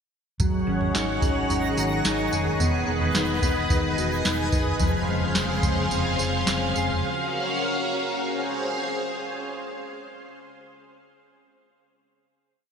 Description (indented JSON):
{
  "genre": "dream pop",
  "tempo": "108 BPM",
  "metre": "4/4",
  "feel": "uneven beats",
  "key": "Db major",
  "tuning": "A4 = 442 Hz",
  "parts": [
    { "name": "string machine, full ensemble", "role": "sustained chords", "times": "0.4-9.5 s", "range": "Db3 to Gb5", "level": "-26 LUFS", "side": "equal", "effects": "ensemble chorus" },
    { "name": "mellow electric guitar", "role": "arpeggios", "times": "0.4-7.6 s", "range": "F3 to Ab4", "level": "-29 LUFS", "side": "left 2 dB", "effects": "lush chorus, ping-pong delay" },
    { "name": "hollow-body short-scale fingered electric bass", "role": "bass", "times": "0.4-7.0 s", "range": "E1 to Ab1", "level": "-30 LUFS", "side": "equal", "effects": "none" },
    { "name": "soft vintage rhythm box", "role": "drums", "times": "0.4-7.0 s", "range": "kick drum, snare drum, tambourine, toms", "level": "-26 LUFS", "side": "right 1 dB", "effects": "gated reverb" },
    { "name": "twinkling granular texture", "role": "texture", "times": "1.2-4.8 s", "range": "Gb5 to B5", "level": "-35 LUFS", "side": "equal", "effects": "built-in reverb, analog chorus, ping-pong delay" }
  ],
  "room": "wet lush hall reverb, RT60 3.0 s",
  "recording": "bright 1980s-style digital production",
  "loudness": "-22 LUFS",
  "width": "side -6 dB against mid",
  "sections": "0.4-9.5 climax",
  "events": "slowing down 4.8-9.5",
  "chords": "0.4 Ab7sus4; 2.6 Emaj7; 4.8 Dbmaj7/F; 7.0 Gbmaj7; 8.2 Dbmaj7",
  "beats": "| 0.40 0.95 1.50 2.05 | 2.60 3.15 3.70 4.25 | 4.80 5.35 5.91 6.47 | 7.05 7.63 8.23 8.85"
}